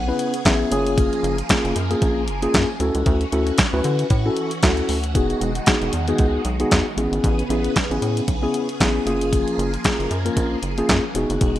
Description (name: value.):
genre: early-eighties boogie funk.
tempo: 115 BPM.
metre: 4/4.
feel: swing 56% on 16ths.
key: unclear.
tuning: A4 = 440 Hz.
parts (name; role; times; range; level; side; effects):
mellow tine electric piano; accompaniment; 0.0-11.6 s; A#3 to F#5; -22 LUFS; left 1 dB; slow stereo tremolo.
phased string machine; sustained chords; 0.0-11.6 s; C#3 to G#4; -29 LUFS; right 1 dB; ensemble chorus, phaser.
rubbery square bass; bass; 0.0-11.6 s; E1 to D3; -24 LUFS; equal; none.
crisp 8-bit digital drum machine; drums; 0.2-11.6 s; handclaps, hi-hat, kick drum, snare drum; -20 LUFS; equal; none.
room: light reverb, digital ambience.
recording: bright 1980s-style digital production.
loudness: -18 LUFS.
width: side -13 dB against mid.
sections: 0.0-11.6 A section.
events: tine electric piano fill 0.0-1.0.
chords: 0.0 Amaj9; 0.7 F#maj9; 2.8 Dmaj9; 5.2 Emaj9; 7.0 Amaj9; 9.1 F#maj9.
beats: 0.46 | 0.98 1.50 2.02 2.54 | 3.06 3.58 4.11 4.63 | 5.15 5.67 6.19 6.72 | 7.24 7.76 8.28 8.80 | 9.32 9.85 10.37 10.89 | 11.41.